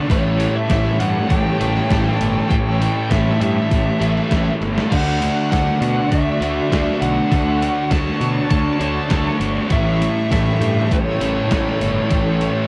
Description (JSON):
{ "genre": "rock, shoegaze and dream pop", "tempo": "100 BPM", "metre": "4/4", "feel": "straight", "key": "D major", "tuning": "A4 = 441 Hz", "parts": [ { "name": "lush unison pad", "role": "sustained chords", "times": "0.0-12.7 s", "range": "F#4 to C#6", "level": "-31 LUFS", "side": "equal", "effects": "chorus, cassette tape" }, { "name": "overdriven electric guitar", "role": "riff", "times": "0.0-12.7 s", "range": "A2 to D4", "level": "-28 LUFS", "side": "equal", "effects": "cassette tape" }, { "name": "overdriven semi-hollow guitar", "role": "riff", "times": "0.0-12.7 s", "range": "A2 to A4", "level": "-28 LUFS", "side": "equal", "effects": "reverse reverb, cassette tape" }, { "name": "thick fuzz guitar", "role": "riff", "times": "0.0-12.7 s", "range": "A2 to D4", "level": "-24 LUFS", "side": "equal", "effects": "distortion, subtle chorus, cassette tape" }, { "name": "fuzz lead guitar", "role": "melody", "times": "0.1-12.7 s", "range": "C#5 to A5", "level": "-27 LUFS", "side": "equal", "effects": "distortion, cassette tape, tape echo" }, { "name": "fuzz fingered electric bass", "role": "bass", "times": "0.1-12.5 s", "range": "G1 to B2", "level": "-25 LUFS", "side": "equal", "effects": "overdrive" }, { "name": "gated 80s digital drum machine", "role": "drums", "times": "0.1-12.6 s", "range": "crash cymbal, hi-hat, kick drum, snare drum", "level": "-24 LUFS", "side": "equal", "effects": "gated reverb, gated reverb snare, overdrive, cassette tape" } ], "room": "light reverb", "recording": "home recording on cassette", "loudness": "-18 LUFS", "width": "mono", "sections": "0.0-12.7 A section", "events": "drum fill 4.6-4.9", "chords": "0.1 A7; 4.9 Dmaj7; 9.7 A7", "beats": "| 0.10 0.70 1.30 1.90 | 2.50 3.10 3.70 4.30 | 4.90 5.50 6.10 6.70 | 7.30 7.90 8.50 9.11 | 9.71 10.31 10.91 11.51 | 12.11" }